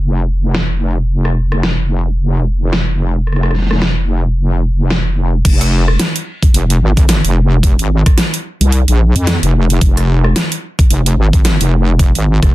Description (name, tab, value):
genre	glitch hop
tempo	110 BPM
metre	4/4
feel	swing 58% on 16ths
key	F minor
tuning	A4 = 438 Hz
part	wobble bass	bass	0.0-12.5 s	F1 to F2	-12 LUFS	equal	chorus, tube saturation
part	dubstep drum kit	drums	0.5-12.5 s	crash cymbal, hi-hat, rim click, snare drum	-17 LUFS	equal	overdrive, low-pass filter on snare, low-pass filter on hats, low-pass filter on cymbals, low-pass filter on room
part	electronic kick drum	drums	5.5-12.5 s	none	-10 LUFS	equal	overdrive
room	little or no reverb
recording	dense, heavily limited modern master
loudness	-11 LUFS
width	side -17 dB against mid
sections	0.0-5.5 A section; 5.5-12.5 B section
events	drop 5.5-12.5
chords	none